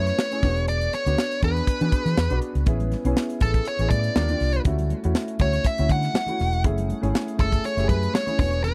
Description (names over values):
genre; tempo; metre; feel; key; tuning
polished 1980s jazz-funk pop; 121 BPM; 4/4; swing 54% on 16ths; F# minor; A4 = 440 Hz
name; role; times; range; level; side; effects
nasal lead guitar with a parked wah; melody; 0.0-8.7 s; A4 to F#5; -29 LUFS; equal; overdrive
warm baby grand piano; accompaniment; 0.0-8.7 s; A3 to B4; -31 LUFS; equal; analog chorus
vintage muted fingered electric bass; bass; 0.0-8.7 s; E1 to E3; -26 LUFS; equal; none
tight funk drum kit; drums; 0.1-8.7 s; hi-hat, kick drum, snare drum; -26 LUFS; equal; none
congas; percussion; 2.7-8.7 s; none; -38 LUFS; equal; none
room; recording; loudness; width
small room ambience; dry, close 1970s-style studio recording; -23 LUFS; mono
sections
0.0-8.7 A section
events
none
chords
0.4 E7; 2.7 Amaj9; 4.2 D#maj7; 4.7 Dmaj7; 6.6 F#m9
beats
0.18 | 0.68 1.17 1.67 2.17 | 2.67 3.16 3.66 4.16 | 4.66 5.15 5.65 6.15 | 6.65 7.14 7.64 8.14 | 8.64